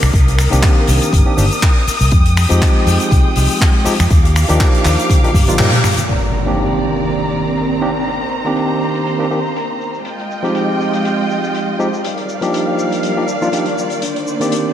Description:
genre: nu-disco, nu disco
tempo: 121 BPM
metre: 4/4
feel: swing 55% on 16ths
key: C minor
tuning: A4 = 438 Hz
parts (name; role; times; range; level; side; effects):
- warm studio string section; sustained chords; 0.0-14.7 s; Eb3 to Eb6; -20 LUFS; right 1 dB; sidechain pumping
- fingered electric bass with an envelope filter; bass; 0.0-5.7 s; G1 to G2; -14 LUFS; equal; sidechain pumping
- loose indie drum kit; drums; 0.0-14.6 s; finger snaps, handclaps, hi-hat, shaker, toms; -20 LUFS; left 1 dB; low-pass filter on hats, low-pass filter on toms, low-pass filter on snare, low-pass filter on perc, low-pass filter on room
- electronic kick drum; drums; 0.1-5.5 s; none; -12 LUFS; equal; none
- barky tine electric piano; accompaniment; 0.5-14.7 s; Eb3 to D5; -18 LUFS; equal; medium stereo tremolo, low-pass filter, diffuse ambient delay
- impact; sound effects; 6.1-8.1 s; none; -22 LUFS; equal; none
- soft octave-layered synth lead; melody; 14.0-14.7 s; D4; -22 LUFS; right 1 dB; chorus
room: moderate lush hall reverb, RT60 2.2 s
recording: dreamy mix soaked in reverb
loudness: -12 LUFS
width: side -10 dB against mid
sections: 0.0-6.1 A section; 6.1-14.7 B section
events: drum fill 5.1-6.1; kick drops out 5.6-6.1; band accent 5.6; impact 6.1-8.1; filter sweep on drum 6.1-14.7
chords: 0.0 Cm9; 2.1 Fm9; 4.1 Ebmaj9; 6.1 Cm9; 10.1 Fm9; 12.0 Ebmaj9; 14.0 Cm9

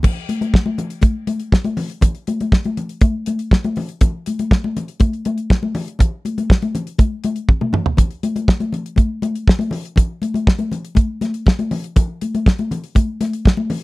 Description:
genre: disco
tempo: 121 BPM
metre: 4/4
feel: straight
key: none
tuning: none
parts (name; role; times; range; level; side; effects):
- damped 70s drum kit; drums; 0.0-13.8 s; crash cymbal, hi-hat, kick drum, snare drum, toms; -13 LUFS; equal; none
- congas; percussion; 0.0-13.8 s; none; -22 LUFS; left 3 dB; none
room: little or no reverb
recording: dry, close 1970s-style studio recording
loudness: -16 LUFS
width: side -20 dB against mid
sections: 0.0-13.8 A section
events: drum fill 7.5-8.0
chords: none

